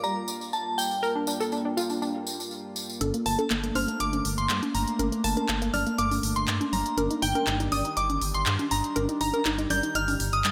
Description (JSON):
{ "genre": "progressive house", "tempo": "121 BPM", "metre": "4/4", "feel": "straight", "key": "unclear", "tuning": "A4 = 441 Hz", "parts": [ { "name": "glassy synth bell", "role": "melody", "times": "0.0-10.5 s", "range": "G5 to G6", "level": "-32 LUFS", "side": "equal", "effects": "chorus, dub echo" }, { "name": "evolving wavetable pad", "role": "sustained chords", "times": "0.0-10.5 s", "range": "G2 to F4", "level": "-35 LUFS", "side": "equal", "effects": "chorus, built-in reverb" }, { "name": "unison pluck", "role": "arpeggios", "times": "0.0-10.1 s", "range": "G3 to D5", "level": "-34 LUFS", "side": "equal", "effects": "cassette tape, digital delay" }, { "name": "tambourine", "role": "percussion", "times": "0.0-3.0 s", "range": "none", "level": "-37 LUFS", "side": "equal", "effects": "none" }, { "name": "dark detuned saw bass", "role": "bass", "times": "3.0-10.5 s", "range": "G1 to G2", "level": "-34 LUFS", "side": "equal", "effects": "none" }, { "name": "house drum kit", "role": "drums", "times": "3.0-10.5 s", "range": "handclaps, hi-hat", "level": "-33 LUFS", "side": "equal", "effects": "studio reverb" }, { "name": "congas", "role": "percussion", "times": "3.0-10.2 s", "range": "none", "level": "-35 LUFS", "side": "equal", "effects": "studio reverb" }, { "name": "glassy wavetable pluck", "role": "second line", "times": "3.3-10.5 s", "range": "G5 to G6", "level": "-41 LUFS", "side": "equal", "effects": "chorus, digital delay" } ], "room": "moderate lush hall reverb, RT60 2.0 s", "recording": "none", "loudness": "-27 LUFS", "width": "mono", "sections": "0.0-3.0 A section; 3.0-10.5 B section", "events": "build-up 3.0-10.5; filter sweep on synth pluck 3.0-10.5", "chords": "0.0 Gm7; 3.0 Bbmaj7/G; 7.0 Ebmaj7/G" }